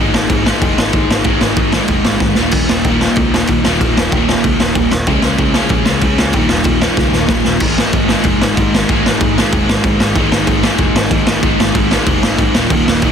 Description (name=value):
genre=punk rock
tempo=188 BPM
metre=4/4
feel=straight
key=unclear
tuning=A4 = 440 Hz
part: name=distorted electric guitar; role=riff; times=0.0-13.1 s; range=Eb2 to Db4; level=-15 LUFS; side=left 1 dB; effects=distortion
part: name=picked electric bass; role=bass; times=0.0-13.1 s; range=Eb1 to Db2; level=-21 LUFS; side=equal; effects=none
part: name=raw garage drum kit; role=drums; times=0.1-13.1 s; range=crash cymbal, kick drum, snare drum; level=-14 LUFS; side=equal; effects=none
room=little or no reverb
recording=dense, heavily limited modern master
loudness=-11 LUFS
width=side -7 dB against mid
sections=0.0-7.6 A section; 7.6-13.1 B section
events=drum fill 2.2-2.5, 7.0-7.6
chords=0.0 Ab5; 2.4 Eb5; 5.1 Db5; 6.4 Eb5; 7.6 Ab5; 12.6 Eb5